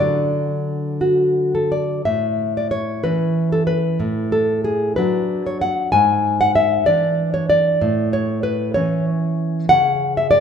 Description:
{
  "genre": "romantic piece for solo classical guitar",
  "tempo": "56-65 BPM (dotted quarters)",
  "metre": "6/8",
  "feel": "rubato",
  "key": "A major",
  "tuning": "A4 = 440 Hz",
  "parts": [
    { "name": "nylon-string guitar", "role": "solo", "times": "0.0-10.4 s", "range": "G#2 to G#5", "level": "-16 LUFS", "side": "equal", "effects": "none" }
  ],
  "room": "wet recital hall reverb, RT60 1.6 s",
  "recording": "minimal, uncompressed stereo recording",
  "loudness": "-16 LUFS",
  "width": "side -7 dB against mid",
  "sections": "0.0-2.1 A section; 2.1-10.4 B section",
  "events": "none",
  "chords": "0.0 D; 2.1 A; 4.0 D/A; 5.9 E7/G#; 7.8 A; 9.7 A/C# (rootless)"
}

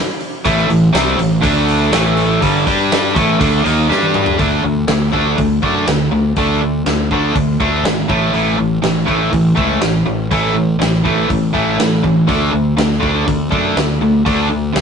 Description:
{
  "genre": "hard rock",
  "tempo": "122 BPM",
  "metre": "4/4",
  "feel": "straight",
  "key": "unclear",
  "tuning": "A4 = 439 Hz",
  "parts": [
    { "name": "big rock drum kit", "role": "drums", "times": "0.2-14.8 s", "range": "hi-hat, kick drum, snare drum, toms", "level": "-20 LUFS", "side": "equal", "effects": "none" },
    { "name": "cranked stack guitar", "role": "riff", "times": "0.5-14.8 s", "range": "G2 to G4", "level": "-14 LUFS", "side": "equal", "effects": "overdrive" },
    { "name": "fuzz fingered electric bass", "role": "bass", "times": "0.5-14.8 s", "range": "G1 to A2", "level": "-18 LUFS", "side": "right 1 dB", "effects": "overdrive" }
  ],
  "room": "moderate studio reverb, RT60 0.6 s",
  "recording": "rough rehearsal-room recording, nothing above 10.6 kHz",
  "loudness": "-12 LUFS",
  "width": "side -6 dB against mid",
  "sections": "0.0-4.4 A section; 4.4-14.8 B section",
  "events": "drum fill 3.9-4.4",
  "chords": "0.0 A5; 1.4 D5; 1.9 A5; 2.7 G5; 3.2 A5; 3.9 G5; 4.4 D5; 8.1 A5; 12.3 D5"
}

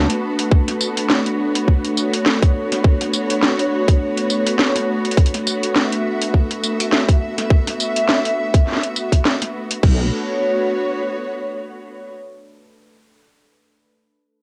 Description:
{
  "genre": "glitch hop",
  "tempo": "103 BPM",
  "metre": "4/4",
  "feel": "swing 56% on 16ths",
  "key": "B minor",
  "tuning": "A4 = 442 Hz",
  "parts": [
    { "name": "warbly tape-like pad", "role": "sustained chords", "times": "0.0-10.1 s", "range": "A3 to B4", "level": "-26 LUFS", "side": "equal", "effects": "chorus, built-in reverb, sidechain pumping, cassette tape" },
    { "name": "wobble bass", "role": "bass", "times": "0.0-0.1, 9.8-10.1 s", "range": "B1", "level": "-20 LUFS", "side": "equal", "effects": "chorus, overdrive" },
    { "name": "rich studio string section", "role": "texture", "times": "0.0-12.1 s", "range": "B3 to E5", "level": "-25 LUFS", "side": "equal", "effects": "sidechain pumping, cassette tape" },
    { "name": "drum and bass drum kit", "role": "drums", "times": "0.1-10.0 s", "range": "crash cymbal, hi-hat, snare drum, tambourine", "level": "-22 LUFS", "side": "equal", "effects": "cassette tape" },
    { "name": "electronic kick drum", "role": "drums", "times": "0.5-10.0 s", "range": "none", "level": "-16 LUFS", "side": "equal", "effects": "cassette tape" }
  ],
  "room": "moderate small room ambience, RT60 0.5 s",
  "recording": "home recording on cassette",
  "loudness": "-18 LUFS",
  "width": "mono",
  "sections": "0.0-9.8 A section; 9.8-12.2 B section",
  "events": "none",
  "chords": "0.0 Bm7; 9.8 B5"
}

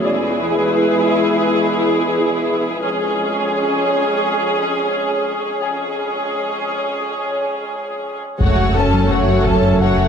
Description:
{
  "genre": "cinematic, hybrid orchestral and electronic film score",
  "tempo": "86 BPM",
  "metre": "4/4",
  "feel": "straight",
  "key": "unclear",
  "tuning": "A4 = 442 Hz",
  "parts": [
    { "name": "warm symphonic viola section", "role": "accompaniment", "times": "0.0-10.1 s", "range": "A3 to A4", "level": "-20 LUFS", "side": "right 2 dB", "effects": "none" },
    { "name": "hollow soft pad", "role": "sustained chords", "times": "0.0-10.1 s", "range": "F#3 to C#5", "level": "-20 LUFS", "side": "left 2 dB", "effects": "chorus" },
    { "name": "pure sine sub bass", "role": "bass", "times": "0.0-10.1 s", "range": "E1 to F#1", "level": "-28 LUFS", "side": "equal", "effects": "none" },
    { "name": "warm studio cello section", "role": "bass", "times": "0.0-10.1 s", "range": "E2 to F#2", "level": "-25 LUFS", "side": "right 2 dB", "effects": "none" },
    { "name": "clear grand piano", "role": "texture", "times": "0.0-10.1 s", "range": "F#4 to G#5", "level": "-29 LUFS", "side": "left 4 dB", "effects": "none" },
    { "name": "warm symphonic violin section", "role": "second line", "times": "8.4-10.1 s", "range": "A4 to A5", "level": "-22 LUFS", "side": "left 4 dB", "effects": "none" },
    { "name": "bright trombone section", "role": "sustained chords", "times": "8.4-10.1 s", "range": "F#3 to A3", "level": "-23 LUFS", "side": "right 6 dB", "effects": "none" },
    { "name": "mellow French horn section", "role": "sustained chords", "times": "8.4-10.1 s", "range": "C#4 to F#4", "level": "-25 LUFS", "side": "left 6 dB", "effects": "none" },
    { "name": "round analog bass", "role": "riff", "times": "8.4-10.1 s", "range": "F#2 to F#3", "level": "-22 LUFS", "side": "left 4 dB", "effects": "none" },
    { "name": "warm studio double bass section", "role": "bass", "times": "8.4-10.1 s", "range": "F#1", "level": "-23 LUFS", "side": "right 3 dB", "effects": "none" },
    { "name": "solo taiko drums", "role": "drums", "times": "8.4-9.8 s", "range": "none", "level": "-21 LUFS", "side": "equal", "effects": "none" }
  ],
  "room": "light reverb",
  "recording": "close, detailed microphones, high-pass filter",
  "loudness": "-15 LUFS",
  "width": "side -7 dB against mid",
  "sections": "0.0-8.4 A section; 8.4-10.1 B section",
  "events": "build-up 0.0-8.4",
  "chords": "0.0 E; 2.8 C#/E#; 8.4 F#m"
}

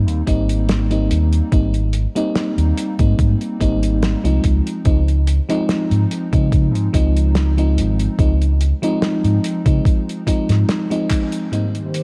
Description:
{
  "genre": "vaporwave",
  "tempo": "72 BPM",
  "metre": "4/4",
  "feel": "swing 53% on 16ths",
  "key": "unclear",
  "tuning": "A4 = 440 Hz",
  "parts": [
    { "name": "FM electric piano with soft pad layer", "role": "accompaniment", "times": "0.0-11.7 s", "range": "Ab2 to Eb4", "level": "-23 LUFS", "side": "equal", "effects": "tremolo, subtle chorus, analog delay" },
    { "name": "fingered electric bass", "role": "bass", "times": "0.0-10.6 s", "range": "Ab1 to Db3", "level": "-19 LUFS", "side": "equal", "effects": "none" },
    { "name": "cloth-damped thuddy drum kit", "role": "drums", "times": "0.1-12.0 s", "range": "handclaps, hi-hat, snare drum", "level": "-28 LUFS", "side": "equal", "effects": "none" },
    { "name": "electronic kick drum", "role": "drums", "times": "0.3-11.3 s", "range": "none", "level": "-19 LUFS", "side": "equal", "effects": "overdrive" },
    { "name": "warbly tape-like pad", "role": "sustained chords", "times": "11.7-12.0 s", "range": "Eb3 to C5", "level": "-27 LUFS", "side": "equal", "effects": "chorus, built-in reverb" }
  ],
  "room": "light reverb, small room reverb",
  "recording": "cassette tape",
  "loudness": "-17 LUFS",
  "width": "mono",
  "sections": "0.0-11.5 A section",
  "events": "drum fill 11.1-11.5; band accent 11.1-11.5",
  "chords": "0.0 Abmaj7; 4.4 Dbmaj7; 11.5 Abmaj7"
}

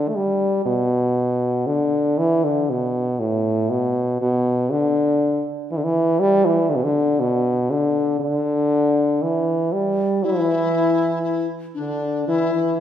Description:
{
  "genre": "chinese traditional, Chinese chamber ensemble",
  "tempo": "59 BPM",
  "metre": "2/4",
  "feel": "rubato",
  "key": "unclear",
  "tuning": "A4 = 440 Hz",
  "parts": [
    { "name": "mellow French horn", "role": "melody", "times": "0.0-12.8 s", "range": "A2 to A3", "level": "-18 LUFS", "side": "equal", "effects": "none" },
    { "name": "bright reedy large dizi", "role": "second line", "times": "10.2-12.7 s", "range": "D4 to E4", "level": "-24 LUFS", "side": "left 9 dB", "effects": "none" }
  ],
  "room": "wet scoring stage reverb, RT60 1.4 s",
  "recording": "recorded in a church or concert hall",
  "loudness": "-18 LUFS",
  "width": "side -10 dB against mid",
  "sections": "0.0-2.2 A section; 2.2-12.8 B section",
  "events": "none",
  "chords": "none"
}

